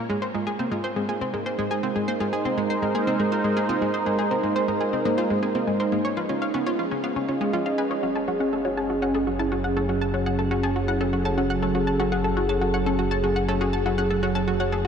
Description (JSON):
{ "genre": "ambient", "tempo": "121 BPM", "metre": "4/4", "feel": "straight", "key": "unclear", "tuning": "A4 = 438 Hz", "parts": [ { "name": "sweeping resonant pad", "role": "sustained chords", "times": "0.0-14.9 s", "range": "F#3 to F5", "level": "-25 LUFS", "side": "right 2 dB", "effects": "chorus, shimmer reverb" }, { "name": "wide unison pluck", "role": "arpeggios", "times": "0.0-14.8 s", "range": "Ab3 to C#5", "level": "-31 LUFS", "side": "moving between left 5 dB and right 1 dB", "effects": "auto-pan, tape echo, shimmer reverb" }, { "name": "analog pluck", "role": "riff", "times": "0.0-14.9 s", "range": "Ab3 to A5", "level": "-27 LUFS", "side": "left 1 dB", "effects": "chorus, tape echo, shimmer reverb" }, { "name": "fat analog bass", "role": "bass", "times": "8.0-14.9 s", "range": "F#1", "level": "-29 LUFS", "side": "left 1 dB", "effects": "none" } ], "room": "wet huge ambient reverb, RT60 8.3 s", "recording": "dark, warm production", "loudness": "-22 LUFS", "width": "side -7 dB against mid", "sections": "0.0-8.0 A section; 8.0-14.9 B section", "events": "none", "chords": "0.1 Ab; 6.0 Db7; 8.0 F#m", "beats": "| 0.10 0.59 1.09 1.58 | 2.08 2.58 3.07 3.57 | 4.06 4.56 5.05 5.55 | 6.05 6.54 7.04 7.53 | 8.03 8.53 9.02 9.52 | 10.01 10.51 11.01 11.50 | 12.00 12.49 12.99 13.48 | 13.98 14.48" }